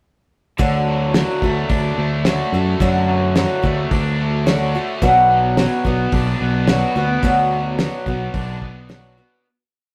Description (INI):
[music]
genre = folk rock and heartland rock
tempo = 108 BPM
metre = 4/4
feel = straight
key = D major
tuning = A4 = 440 Hz
[part]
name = picked swing-style acoustic guitar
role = accompaniment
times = 0.6-9.5 s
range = B2 to F#4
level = -22 LUFS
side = equal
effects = none
[part]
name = raw garage guitar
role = riff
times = 0.6-9.5 s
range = B2 to F#4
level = -25 LUFS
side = equal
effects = overdrive
[part]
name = fingered electric bass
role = bass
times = 0.6-9.2 s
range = B1 to F#2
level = -23 LUFS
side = equal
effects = none
[part]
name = cloth-damped thuddy drum kit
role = drums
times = 0.6-9.0 s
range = hi-hat, kick drum, snare drum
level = -22 LUFS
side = equal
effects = none
[sound]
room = moderate studio ambience, RT60 0.5 s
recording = rough rehearsal-room recording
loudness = -18 LUFS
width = mono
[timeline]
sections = 0.6-9.5 verse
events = fade-out 7.2-9.5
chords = 0.6 D; 5.0 Bm